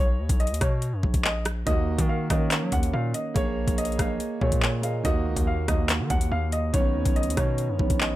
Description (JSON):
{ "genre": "hip hop, drill", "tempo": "142 BPM", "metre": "4/4", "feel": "half-time", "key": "Eb minor", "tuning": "A4 = 440 Hz", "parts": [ { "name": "dark upright piano", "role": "melody", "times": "0.0-8.2 s", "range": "C#5 to Gb5", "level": "-31 LUFS", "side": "equal", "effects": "digital delay" }, { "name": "distorted 808-style bass", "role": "bass", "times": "0.0-8.2 s", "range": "Bb1 to Gb3", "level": "-28 LUFS", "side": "equal", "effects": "distortion" }, { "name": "drill drum kit", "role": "drums", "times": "0.3-8.1 s", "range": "handclaps, hi-hat, kick drum, rim click", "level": "-25 LUFS", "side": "equal", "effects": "overdrive" }, { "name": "dark concert grand piano", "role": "accompaniment", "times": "1.7-8.2 s", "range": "Eb3 to Eb5", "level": "-29 LUFS", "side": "right 4 dB", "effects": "none" } ], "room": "studio ambience", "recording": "none", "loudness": "-22 LUFS", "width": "side -15 dB against mid", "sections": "0.0-8.2 A section", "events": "none", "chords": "0.0 Badd9; 1.7 Ebm; 3.4 Bbm7; 5.0 Ebm; 6.7 Badd9", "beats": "0.40 0.82 1.25 | 1.67 2.09 2.51 2.94 | 3.36 3.78 4.20 4.62 | 5.05 5.47 5.89 6.32 | 6.74 7.16 7.58 8.01" }